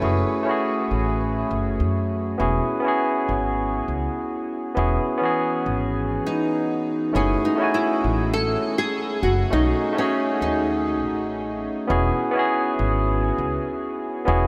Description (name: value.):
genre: sunset chillout.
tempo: 101 BPM.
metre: 4/4.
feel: straight.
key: E major.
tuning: A4 = 440 Hz.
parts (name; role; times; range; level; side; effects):
nylon-string guitar; melody; 0.0-0.6, 6.3-11.0 s; C#4 to C#5; -28 LUFS; equal; analog chorus, diffuse ambient delay.
barky tine electric piano; accompaniment; 0.0-14.5 s; E3 to G#5; -25 LUFS; equal; overdrive, diffuse ambient delay.
upright bass; bass; 0.0-14.5 s; E1 to F#2; -27 LUFS; equal; none.
room: wet huge ambient reverb, RT60 7.7 s.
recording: dreamy mix soaked in reverb.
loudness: -23 LUFS.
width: mono.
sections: 0.0-11.9 A section; 11.9-14.5 B section.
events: none.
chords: 0.0 F#m7; 2.4 E69; 7.2 F#m7; 9.5 B13 (rootless); 11.9 E69.